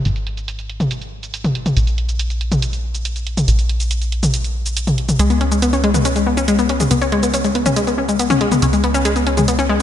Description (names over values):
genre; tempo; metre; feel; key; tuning
uplifting trance; 140 BPM; 4/4; straight; unclear; A4 = 438 Hz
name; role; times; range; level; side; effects
plucky analog bass; bass; 0.0-9.8 s; G#1 to C#2; -20 LUFS; equal; none
punchy analog drum machine; drums; 0.1-9.7 s; hi-hat, shaker, toms; -21 LUFS; equal; low-pass filter on hats, low-pass filter on perc, low-pass filter on snare, low-pass filter on toms
analog pluck; arpeggios; 5.2-9.8 s; G#3 to C#4; -16 LUFS; left 3 dB; chorus, ping-pong delay
room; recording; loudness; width
moderate lush hall reverb, RT60 2.1 s; dreamy mix soaked in reverb; -15 LUFS; side -10 dB against mid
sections
0.0-9.8 A section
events
none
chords
0.0 N.C.; 5.2 C#7(no3)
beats
| 0.05 0.48 0.91 1.34 | 1.77 2.19 2.62 3.05 | 3.48 3.91 4.34 4.77 | 5.19 5.62 6.05 6.48 | 6.91 7.34 7.77 8.19 | 8.62 9.05 9.48